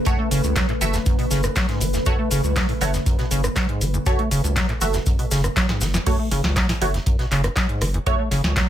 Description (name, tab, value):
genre	acid house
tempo	120 BPM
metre	4/4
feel	straight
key	F# minor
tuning	A4 = 443 Hz
part	warbly tape-like pad	sustained chords	0.0-6.0 s	C#3 to B4	-28 LUFS	equal	chorus, built-in reverb, phaser, sidechain pumping
part	acid bass, square	riff	0.1-8.7 s	F#1 to A3	-25 LUFS	equal	wide subtle chorus
part	band-passed chord stab	stabs	0.1-8.2 s	A3 to E5	-27 LUFS	right 3 dB	phaser, analog chorus, digital delay
part	booming analog drum machine	drums	0.1-8.7 s	crash cymbal, handclaps, hi-hat, rim click, snare drum	-26 LUFS	equal	none
part	electronic kick drum	drums	0.1-8.7 s	none	-23 LUFS	equal	none
part	warm soul drum kit	drums	0.1-8.7 s	hi-hat, snare drum	-36 LUFS	right 2 dB	none
part	tube shaker	percussion	0.1-6.0 s	none	-32 LUFS	left 3 dB	none
part	saturated sub bass	bass	0.3-8.6 s	F#1 to C#2	-24 LUFS	equal	sidechain pumping
room	light reverb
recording	none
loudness	-18 LUFS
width	side -11 dB against mid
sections	0.0-6.1 A section; 6.1-8.7 B section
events	drum fill 5.6-6.1; drop 6.1-8.7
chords	0.0 F#m